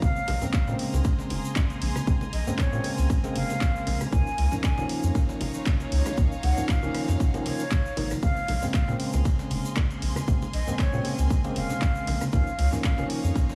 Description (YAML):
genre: deep house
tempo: 117 BPM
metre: 4/4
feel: swing 54% on 16ths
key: unclear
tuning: A4 = 438 Hz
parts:
  - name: breathy jazz flute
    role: melody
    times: 0.0-13.1 s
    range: Db5 to Ab5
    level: -37 LUFS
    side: equal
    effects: tape echo
  - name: warbly tape-like pad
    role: sustained chords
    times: 0.0-13.6 s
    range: Bb3 to C6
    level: -44 LUFS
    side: equal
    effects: none
  - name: tine electric piano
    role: stabs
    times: 0.0-13.6 s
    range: Db3 to Eb4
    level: -34 LUFS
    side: equal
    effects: overdrive, sidechain pumping, tape echo
  - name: round analog bass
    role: bass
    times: 0.0-13.3 s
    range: F1 to Bb2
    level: -28 LUFS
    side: equal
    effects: sidechain pumping
  - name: breakbeat sampler-style drum kit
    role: drums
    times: 0.0-13.6 s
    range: hi-hat, ride cymbal, snare drum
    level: -46 LUFS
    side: equal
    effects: none
  - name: electronic kick drum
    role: drums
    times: 0.0-13.5 s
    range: none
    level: -27 LUFS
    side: equal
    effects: small room ambience
  - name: congas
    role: percussion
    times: 0.0-13.5 s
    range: none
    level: -37 LUFS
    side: equal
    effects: none
  - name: egg shaker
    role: percussion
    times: 0.0-13.6 s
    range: none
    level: -47 LUFS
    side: equal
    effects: none
  - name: bright symphonic string section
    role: texture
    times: 0.0-13.6 s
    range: Eb4 to C6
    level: -43 LUFS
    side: equal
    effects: sidechain pumping
  - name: house drum kit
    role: drums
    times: 0.3-13.2 s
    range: handclaps, hi-hat, rim click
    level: -39 LUFS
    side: equal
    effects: small room ambience
room: studio ambience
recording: heavily compressed radio sound, small room ambience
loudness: -26 LUFS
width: mono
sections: 0.0-13.6 A section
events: none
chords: 0.0 Bbm9; 4.1 Db69; 8.2 Bbm9; 12.3 Db69